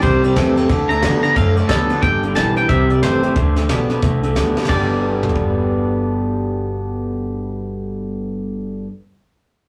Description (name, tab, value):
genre	rockabilly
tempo	180 BPM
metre	4/4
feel	swing 62% on 8ths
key	G major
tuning	A4 = 437 Hz
part	twangy electric guitar	melody	0.0-8.8 s	A4 to Bb5	-24 LUFS	equal	spring reverb
part	picked steel-string acoustic guitar	accompaniment	0.0-8.9 s	G2 to G4	-27 LUFS	equal	none
part	electric guitar through a small old amp	riff	0.0-8.9 s	G2 to D4	-22 LUFS	equal	none
part	upright bass	bass	0.0-8.8 s	G1 to D3	-24 LUFS	equal	none
part	soft brush drum kit	drums	0.0-5.5 s	crash cymbal, hi-hat, kick drum, ride cymbal, snare drum, toms	-25 LUFS	equal	none
room	wet booth ambience, RT60 0.2 s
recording	rough rehearsal-room recording, tube saturation, small room ambience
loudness	-18 LUFS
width	mono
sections	0.0-2.0 A section; 2.0-4.7 B section; 4.7-7.4 C section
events	drum fill 4.5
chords	0.0 C; 0.7 D; 2.0 G; 2.7 C; 3.4 D; 4.7 G